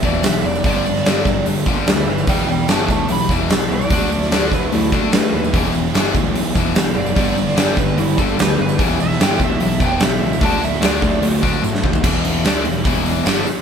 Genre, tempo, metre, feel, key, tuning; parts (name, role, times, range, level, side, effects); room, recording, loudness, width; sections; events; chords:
classic rock; 148 BPM; 4/4; straight; E minor; A4 = 440 Hz
overdriven slide guitar; melody; 0.0-11.2 s; E4 to B5; -23 LUFS; right 2 dB
biting overdriven guitar; riff; 0.0-13.5 s; E2 to G4; -24 LUFS; right 5 dB
distorted electric guitar; riff; 0.0-13.5 s; E2 to D4; -21 LUFS; left 6 dB; overdrive
fuzz picked electric bass; bass; 0.0-13.4 s; E1 to A2; -23 LUFS; equal; overdrive
huge arena drum kit; drums; 0.0-13.6 s; crash cymbal, hi-hat, kick drum, snare drum, toms; -18 LUFS; right 1 dB
tambourine; percussion; 0.0-13.4 s; -38 LUFS; right 6 dB
moderate stone room reverb, RT60 1.1 s; band playing live in one room; -14 LUFS; side -7 dB against mid
0.0-12.0 A section; 12.0-13.6 B section
electric slide guitar solo 0.0-12.0; drum fill 11.6-12.0
0.0 Em; 0.7 G; 2.3 Em; 3.9 D; 5.5 Em; 7.2 G; 8.8 Em; 10.4 D; 12.0 Em